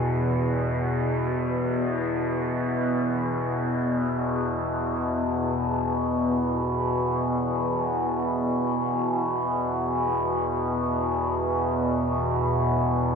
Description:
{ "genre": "ambient", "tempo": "free time", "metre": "none", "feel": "none", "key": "unclear", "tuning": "A4 = 440 Hz", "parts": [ { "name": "overtone-sweeping drone", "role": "solo", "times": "0.0-13.2 s", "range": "E2 to B2", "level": "-23 LUFS", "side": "equal", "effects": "chorus, built-in reverb, phaser" } ], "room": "wet huge ambient reverb, RT60 8.6 s", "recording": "worn, warbling old tape, cassette tape, warbly pitch drift", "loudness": "-23 LUFS", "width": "side -6 dB against mid", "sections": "0.0-4.7 A section; 4.7-13.2 B section", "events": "none", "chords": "0.0 E5", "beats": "free time" }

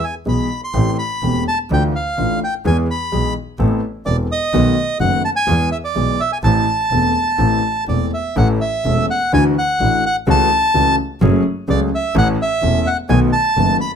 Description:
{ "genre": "tango", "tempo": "127 BPM", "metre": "4/4", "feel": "rubato", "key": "A minor, A major from 8.4 s", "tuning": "A4 = 439 Hz", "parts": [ { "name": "bandoneon", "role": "melody", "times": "0.0-13.9 s", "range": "D5 to C6", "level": "-18 LUFS", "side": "right 1 dB", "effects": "none" }, { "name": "warm concert grand piano", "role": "accompaniment", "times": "0.3-13.8 s", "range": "E1 to A4", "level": "-19 LUFS", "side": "left 1 dB", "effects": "none" }, { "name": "clear double bass", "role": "bass", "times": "0.3-13.8 s", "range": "E1 to E2", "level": "-19 LUFS", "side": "right 1 dB", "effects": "none" } ], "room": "light reverb", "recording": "close, detailed microphones", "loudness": "-14 LUFS", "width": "side -7 dB against mid", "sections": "0.0-8.4 A section; 8.4-14.0 B section", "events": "none", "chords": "0.0 E; 0.7 Am7; 1.7 Dmadd9; 2.7 E; 3.6 Amadd9; 4.5 B7; 5.5 E; 6.4 Am; 8.4 A; 9.3 Dadd9; 10.3 A6/C#; 11.2 F#madd9; 12.2 A; 13.1 B7", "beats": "0.26 | 0.74 1.23 1.71 2.19 | 2.66 3.13 3.60 4.07 | 4.54 5.01 5.48 5.96 | 6.44 6.92 7.39 7.88 | 8.37 8.85 9.33 9.80 | 10.28 10.75 11.21 11.68 | 12.15 12.62 13.09 13.56" }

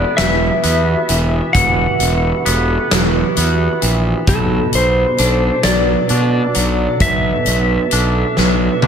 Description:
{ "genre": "post-rock", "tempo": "44 BPM (dotted quarters)", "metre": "6/8", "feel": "straight", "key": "E minor", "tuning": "A4 = 436 Hz", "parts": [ { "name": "clean lap steel guitar", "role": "melody", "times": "0.0-8.9 s", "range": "A4 to F#5", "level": "-19 LUFS", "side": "left 3 dB", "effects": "slapback echo, analog delay" }, { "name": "ethereal airy pad", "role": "sustained chords", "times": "0.0-8.9 s", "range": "B2 to E5", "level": "-26 LUFS", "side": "right 1 dB", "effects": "ensemble chorus, built-in reverb" }, { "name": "twangy electric guitar", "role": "arpeggios", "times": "0.0-8.9 s", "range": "B2 to D4", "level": "-22 LUFS", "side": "left 1 dB", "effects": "slapback echo, analog delay" }, { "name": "vibraphone with medium hard mallets", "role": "arpeggios", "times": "0.0-8.9 s", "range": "A4 to B5", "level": "-24 LUFS", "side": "right 12 dB", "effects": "slapback echo, analog delay" }, { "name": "fuzz fingered electric bass", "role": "bass", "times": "0.0-8.9 s", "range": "E1 to B2", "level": "-17 LUFS", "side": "equal", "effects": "overdrive" }, { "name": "huge arena drum kit", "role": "drums", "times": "0.2-8.9 s", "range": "hi-hat, kick drum, snare drum, toms", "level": "-18 LUFS", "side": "equal", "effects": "none" } ], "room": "moderate concert hall reverb, RT60 1.9 s, small room ambience", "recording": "big arena sound", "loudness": "-12 LUFS", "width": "side -7 dB against mid", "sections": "0.0-8.9 A section", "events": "drum fill 8.4-8.9", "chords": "0.0 Emadd9; 4.3 Bm7", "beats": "0.19 | 1.56 2.92 | 4.28 5.65 | 7.01 8.38" }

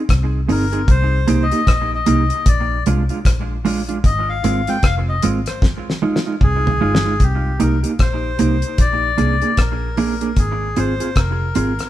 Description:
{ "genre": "roots reggae", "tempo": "76 BPM", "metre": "4/4", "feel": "swing 60% on 16ths", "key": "C minor", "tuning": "A4 = 441 Hz", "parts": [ { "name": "mellow electric guitar", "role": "accompaniment", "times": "0.0-11.7 s", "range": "Ab3 to Ab4", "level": "-21 LUFS", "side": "right 4 dB", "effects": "dub echo" }, { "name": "vintage muted fingered electric bass", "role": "bass", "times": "0.1-11.8 s", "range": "F1 to C2", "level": "-20 LUFS", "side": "equal", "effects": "none" }, { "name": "damped 70s drum kit", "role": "drums", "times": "0.1-11.9 s", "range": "hi-hat, kick drum, rim click, snare drum, toms", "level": "-17 LUFS", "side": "equal", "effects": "none" }, { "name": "melodica", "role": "melody", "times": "0.5-11.9 s", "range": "G4 to G5", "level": "-22 LUFS", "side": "left 4 dB", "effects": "none" } ], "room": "moderate stone room reverb, RT60 1.2 s", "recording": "band playing live in one room", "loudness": "-15 LUFS", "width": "side -13 dB against mid", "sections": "0.0-7.2 A section; 7.2-11.9 B section", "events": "melodica solo 0.0-7.2; drum fill 5.6-7.2", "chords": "0.0 Abmaj9; 0.9 Cm7; 2.5 Bb7; 4.0 Ab6; 5.6 Fm7; 7.2 Cm7; 8.8 Bb7; 10.4 Ab6", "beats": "0.09 | 0.88 1.67 2.46 3.25 | 4.04 4.83 5.62 6.41 | 7.20 8.00 8.79 9.58 | 10.37 11.16" }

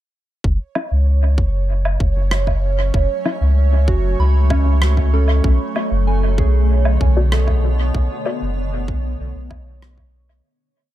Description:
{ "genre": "ambient dub", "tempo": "96 BPM", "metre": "4/4", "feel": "straight", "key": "F# minor", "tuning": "A4 = 440 Hz", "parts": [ { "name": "granular cloud pad", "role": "sustained chords", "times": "2.2-10.4 s", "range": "B2 to G#5", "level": "-27 LUFS", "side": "equal", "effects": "built-in reverb" }, { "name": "soft dub sub bass", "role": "bass", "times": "0.4-10.4 s", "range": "F#1 to C#2", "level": "-16 LUFS", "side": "equal", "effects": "tube saturation" }, { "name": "electronic kick drum", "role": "drums", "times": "0.4-10.1 s", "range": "none", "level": "-20 LUFS", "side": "equal", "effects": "none" }, { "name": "bubbling stepped-filter texture", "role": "texture", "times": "1.0-10.5 s", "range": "C#5", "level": "-29 LUFS", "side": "right 10 dB", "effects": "chorus, built-in reverb" }, { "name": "filtered dub chord stab", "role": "stabs", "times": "0.8-8.4 s", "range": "F#3 to D5", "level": "-28 LUFS", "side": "left 4 dB", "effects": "chorus, dub echo" }, { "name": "woodblock and rim click", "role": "drums", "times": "0.8-10.4 s", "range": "none", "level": "-27 LUFS", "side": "equal", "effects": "dub echo" }, { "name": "soft synth bell", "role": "arpeggios", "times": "3.9-10.5 s", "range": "C#4 to B5", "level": "-26 LUFS", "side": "right 3 dB", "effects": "chorus, tape echo" } ], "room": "studio ambience", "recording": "echo-heavy mix", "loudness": "-15 LUFS", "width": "side -14 dB against mid", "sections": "0.4-10.4 groove", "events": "fade-in on ambient pad 0.4-10.4; filter sweep on synth stab 0.4-10.4; fade-out 7.1-10.4", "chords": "0.4 F#m7; 5.4 Bm7", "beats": "| 0.45 1.07 1.70 2.32 | 2.95 3.57 4.20 4.82 | 5.45 6.07 6.70 7.32 | 7.95 8.57 9.20 9.82" }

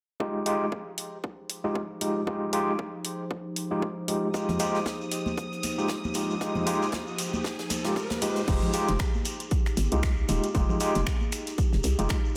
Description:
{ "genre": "deep house", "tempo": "116 BPM", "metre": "4/4", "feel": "swing 57% on 16ths", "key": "F minor", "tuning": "A4 = 441 Hz", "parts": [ { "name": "warbly tape-like pad", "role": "sustained chords", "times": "0.2-12.4 s", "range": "F3 to C5", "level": "-39 LUFS", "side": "equal", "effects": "chorus, built-in reverb, vintage 12-bit sampler grit, sidechain pumping" }, { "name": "overdriven tine electric piano", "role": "stabs", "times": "0.2-12.2 s", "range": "Ab3 to G4", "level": "-32 LUFS", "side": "equal", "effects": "fast tremolo, sidechain pumping, low-pass filter, analog delay" }, { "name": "electronic kick drum", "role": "drums", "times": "0.2-12.2 s", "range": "none", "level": "-31 LUFS", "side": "equal", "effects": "overdrive, high-pass filter on kick, high-pass filter on room" }, { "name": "house drum kit", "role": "drums", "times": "0.5-12.2 s", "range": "crash cymbal, finger snaps, hi-hat", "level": "-37 LUFS", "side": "equal", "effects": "overdrive" }, { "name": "tight funk drum kit", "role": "drums", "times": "4.3-12.2 s", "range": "hi-hat, snare drum", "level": "-44 LUFS", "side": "equal", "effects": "sidechain pumping on hats, high-pass filter on hats, high-pass filter on snare, high-pass filter on room" }, { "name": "shekere", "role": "percussion", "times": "4.3-12.3 s", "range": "none", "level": "-42 LUFS", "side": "equal", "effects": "none" }, { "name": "riser", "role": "sound effects", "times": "5.5-8.5 s", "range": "none", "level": "-43 LUFS", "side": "equal", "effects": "none" }, { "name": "dark studio violin section", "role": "texture", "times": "4.3-8.5 s", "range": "Eb6", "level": "-43 LUFS", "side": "equal", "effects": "none" }, { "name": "congas", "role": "percussion", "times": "4.5-11.3 s", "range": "none", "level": "-38 LUFS", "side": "equal", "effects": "none" }, { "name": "hollow knocking FM bass", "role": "bass", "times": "8.5-12.1 s", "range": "Eb1 to C2", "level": "-29 LUFS", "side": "equal", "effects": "sidechain pumping" } ], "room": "moderate plate reverb, RT60 1.6 s, studio reverb", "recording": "dreamy mix soaked in reverb", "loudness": "-28 LUFS", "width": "mono", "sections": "0.2-8.5 A section; 8.5-12.4 B section", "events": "filter sweep on ambient pad 0.2-8.5; riser 5.5-8.5", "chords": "0.2 Fm9", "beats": "| 0.20 0.72 1.24 1.75 | 2.27 2.79 3.31 3.82 | 4.34 4.86 5.38 5.89 | 6.41 6.93 7.44 7.96 | 8.48 8.99 9.51 10.03 | 10.55 11.06 11.58 12.10" }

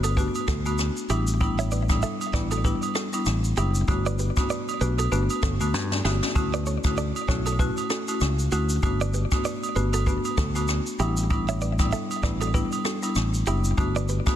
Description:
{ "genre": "afrobeats", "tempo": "97 BPM", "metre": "4/4", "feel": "swing 58% on 16ths", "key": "unclear", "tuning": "A4 = 440 Hz", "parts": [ { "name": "marimba with medium mallets", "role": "accompaniment", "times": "0.0-14.4 s", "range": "G3 to F#4", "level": "-29 LUFS", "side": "left 3 dB", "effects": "none" }, { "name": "direct-recorded clean electric guitar", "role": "riff", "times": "0.0-14.2 s", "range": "D4 to E5", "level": "-33 LUFS", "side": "right 6 dB", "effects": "ping-pong delay" }, { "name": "fingered electric bass", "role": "bass", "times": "0.0-14.2 s", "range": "F#1 to G2", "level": "-25 LUFS", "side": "equal", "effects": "none" }, { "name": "jazz brush drum kit", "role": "drums", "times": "0.0-14.4 s", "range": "kick drum, rim click, shaker, snare drum", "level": "-28 LUFS", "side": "equal", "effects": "soft clipping on snare" }, { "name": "agogo bells", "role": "percussion", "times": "0.0-14.4 s", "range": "none", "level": "-34 LUFS", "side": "right 9 dB", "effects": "none" } ], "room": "small room ambience", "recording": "dense, heavily limited modern master", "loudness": "-22 LUFS", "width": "side -11 dB against mid", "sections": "0.0-14.4 A section", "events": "drum fill 5.7-6.4", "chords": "0.0 Gmaj7; 1.1 A7sus4; 3.9 Gmaj7; 6.4 Dmaj7; 8.8 Gmaj7; 11.0 A7sus4; 13.8 Gmaj7", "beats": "0.17 0.79 | 1.41 2.03 2.65 3.26 | 3.88 4.50 5.12 5.74 | 6.36 6.97 7.59 8.21 | 8.83 9.45 10.07 10.69 | 11.30 11.92 12.54 13.16 | 13.78" }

